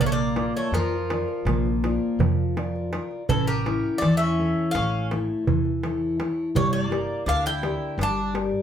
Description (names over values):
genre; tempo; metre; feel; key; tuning
greek folk, Greek bouzouki band; 165 BPM (eighths); 9/8; straight; A phrygian dominant; A4 = 440 Hz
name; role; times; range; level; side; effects
Greek bouzouki; melody; 0.0-8.3 s; A4 to A5; -29 LUFS; equal; none
Greek bouzouki; second line; 0.0-8.3 s; E3 to E4; -33 LUFS; right 1 dB; none
fingerpicked steel-string acoustic guitar; accompaniment; 0.0-8.6 s; D3 to D5; -26 LUFS; left 2 dB; none
upright bass; bass; 0.0-8.5 s; G1 to F2; -29 LUFS; equal; none
darbuka; percussion; 0.2-8.5 s; none; -27 LUFS; right 6 dB; none
room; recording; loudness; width
wet studio reverb, RT60 0.6 s; heard from further back in the room; -22 LUFS; side -9 dB against mid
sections
0.0-8.6 A section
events
speeding up 0.0-8.6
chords
0.0 Bb; 3.3 A; 6.5 Gm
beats
0.35 0.72 1.09 1.46 1.83 2.19 2.56 2.92 | 3.29 3.65 4.02 4.38 4.74 5.10 5.46 5.83 6.19 | 6.55 6.91 7.26 7.62 7.98 8.34